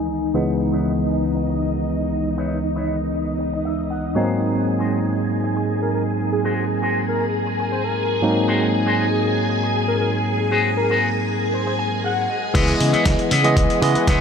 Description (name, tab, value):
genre	nu-disco, nu disco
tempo	118 BPM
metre	4/4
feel	straight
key	C# dorian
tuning	A4 = 441 Hz
part	barky tine electric piano	accompaniment	0.0-14.2 s	C#2 to D#5	-21 LUFS	equal	medium stereo tremolo, sidechain pumping, tape echo
part	string machine, full ensemble	sustained chords	0.0-14.2 s	D#4 to G#5	-25 LUFS	equal	phaser, ensemble chorus, sidechain pumping
part	electric guitar with an envelope filter	riff	0.0-14.2 s	D#4 to G#5	-28 LUFS	left 3 dB	lush chorus, low-pass filter, tape echo
part	soft octave-layered synth lead	melody	5.8-14.2 s	G#4 to F#5	-27 LUFS	left 1 dB	chorus, tape echo
part	fingered electric bass with an envelope filter	bass	12.5-14.2 s	C#2 to C#3	-21 LUFS	equal	none
part	electronic kick drum	drums	12.5-14.2 s	none	-20 LUFS	equal	overdrive
part	dusty soul sampler-style drum kit	drums	12.6-14.2 s	crash cymbal, hi-hat, snare drum	-25 LUFS	left 1 dB	overdrive, low-pass filter on hats, low-pass filter on cymbals, low-pass filter on snare, low-pass filter on room
room	wet huge ambient reverb, RT60 8.6 s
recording	dreamy mix soaked in reverb, low-pass filter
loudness	-18 LUFS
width	side -7 dB against mid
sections	0.0-12.5 A section; 12.5-14.2 B section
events	clean electric guitar fill 0.0-0.3, 3.4-4.4, 11.5-12.5; filter sweep on clean electric guitar 0.0-12.5; filter sweep 0.0-12.5; drop 12.5-14.2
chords	0.0 C#m9; 4.2 G#7; 12.5 C#m9